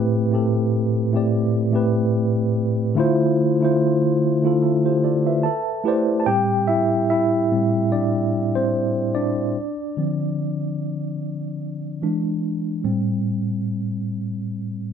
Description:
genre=R&B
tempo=73 BPM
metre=4/4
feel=swing 56% on 16ths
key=A minor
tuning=A4 = 442 Hz
part: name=mellow tine electric piano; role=solo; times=0.0-14.9 s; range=A2 to A5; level=-19 LUFS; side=equal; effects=fast stereo tremolo
room=moderate small room reverb, RT60 0.5 s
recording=none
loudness=-19 LUFS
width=side -8 dB against mid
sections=0.0-6.3 A section; 6.3-14.9 B section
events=tine electric piano solo 6.3-14.9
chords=0.0 Am9; 3.0 Dm9; 5.4 Am11; 6.3 Am7; 9.6 Dm7; 12.0 E7; 12.8 Am7

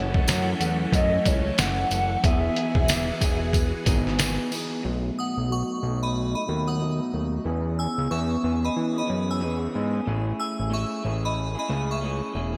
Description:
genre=indie pop, bedroom pop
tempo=92 BPM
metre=4/4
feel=swing 60% on 16ths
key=E major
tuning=A4 = 440 Hz
part: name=warbly nostalgic lead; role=melody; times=0.0-4.2 s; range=C#5 to F#5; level=-30 LUFS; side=equal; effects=tremolo, lush chorus, digital delay
part: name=electric guitar through a small old amp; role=accompaniment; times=0.0-12.6 s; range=F#2 to G#4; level=-32 LUFS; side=equal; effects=subtle chorus, warbly pitch drift, low-pass filter
part: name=phased string machine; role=sustained chords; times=0.0-4.8 s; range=E3 to G#5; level=-36 LUFS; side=equal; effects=ensemble chorus, phaser
part: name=fat analog bass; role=bass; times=0.0-12.6 s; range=E1 to E3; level=-30 LUFS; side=equal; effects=none
part: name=trip hop sampler-style drum kit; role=drums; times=0.1-4.7 s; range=hi-hat, kick drum, snare drum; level=-27 LUFS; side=equal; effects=gated reverb
part: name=tambourine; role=percussion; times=0.3-4.7 s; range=none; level=-39 LUFS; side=equal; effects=none
part: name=glassy synth bell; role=second line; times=5.2-12.0 s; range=D#5 to E6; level=-34 LUFS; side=equal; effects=lush chorus, digital delay
room=moderate lush hall reverb, RT60 2.6 s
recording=bright 1980s-style digital production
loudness=-25 LUFS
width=mono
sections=0.0-4.8 A section; 4.8-12.6 B section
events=filter sweep on clean electric guitar 4.8-12.6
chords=0.0 F#m7; 2.2 Emaj7; 4.8 B7; 7.5 E6; 10.1 Amaj7

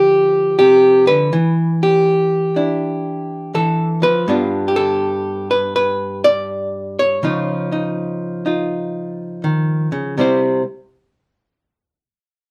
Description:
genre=solo jazz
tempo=81 BPM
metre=4/4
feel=swing 66% on 8ths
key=C major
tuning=A4 = 440 Hz
part: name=archtop guitar, miked and amplified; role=solo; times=0.0-10.6 s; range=G2 to D5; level=-17 LUFS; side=equal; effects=none
room=light reverb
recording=band playing live in one room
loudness=-17 LUFS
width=mono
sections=0.0-10.2 A section; 10.2-12.5 B section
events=none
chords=0.0 Dm7; 1.3 Em7; 4.3 G7; 7.2 Dbadd9; 10.2 C

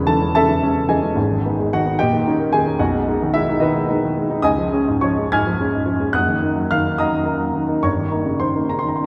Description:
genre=classical, romantic character piece for solo piano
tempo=72 BPM (dotted quarters)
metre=6/8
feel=uneven beats, rubato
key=unclear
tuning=A4 = 440 Hz
part: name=warm baby grand piano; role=solo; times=0.0-9.1 s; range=E1 to Ab6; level=-19 LUFS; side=equal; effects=none
room=wet church reverb, RT60 3.1 s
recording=recorded in a church or concert hall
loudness=-19 LUFS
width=mono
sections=0.0-9.1 A section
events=none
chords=0.0 C#m/E; 1.2 G#m; 2.0 D#7/A#; 2.8 G#m/B; 4.4 Db; 6.1 Ebm/Gb; 7.8 Eb7/G

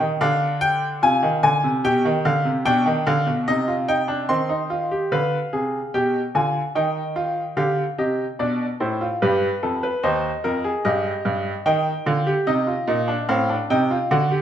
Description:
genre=classical, baroque-style 3-part fugue for grand piano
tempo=73 BPM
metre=4/4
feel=straight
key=C minor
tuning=A4 = 440 Hz
part: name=bright baby grand piano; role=solo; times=0.0-14.4 s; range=Eb2 to C6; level=-19 LUFS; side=equal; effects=none
room=moderate recital hall reverb, RT60 1.3 s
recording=minimal, uncompressed stereo recording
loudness=-19 LUFS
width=side -10 dB against mid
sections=0.0-5.1 A section; 5.1-14.4 B section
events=none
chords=0.2 Dm7b5; 1.8 G7/B; 3.5 Cm; 5.1 G7; 6.8 Cm/Eb; 8.4 Bdim; 10.0 Cm/Eb; 11.7 Eb; 13.3 Adim

